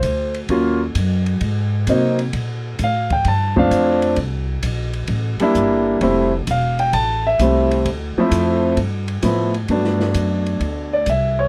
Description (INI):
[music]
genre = jazz piano trio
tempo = 130 BPM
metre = 4/4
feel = swing 68% on 8ths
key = C major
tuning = A4 = 440 Hz
[part]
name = warm baby grand piano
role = melody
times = 0.0-11.5 s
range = F3 to A5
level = -20 LUFS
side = equal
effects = none
[part]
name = upright bass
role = bass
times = 0.0-11.5 s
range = E1 to C3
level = -24 LUFS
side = equal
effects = none
[part]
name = open jazz drum kit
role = drums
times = 0.0-11.2 s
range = hi-hat, kick drum, ride cymbal, snare drum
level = -31 LUFS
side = equal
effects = none
[sound]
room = light reverb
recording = none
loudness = -19 LUFS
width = mono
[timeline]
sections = 0.0-9.7 A section; 9.7-11.5 B section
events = none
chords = 0.5 Ebm7; 1.4 Ab9; 2.3 Bbmaj7; 4.2 C7; 6.0 Fmaj7; 7.9 Dm7; 8.8 G7; 9.7 Gmaj9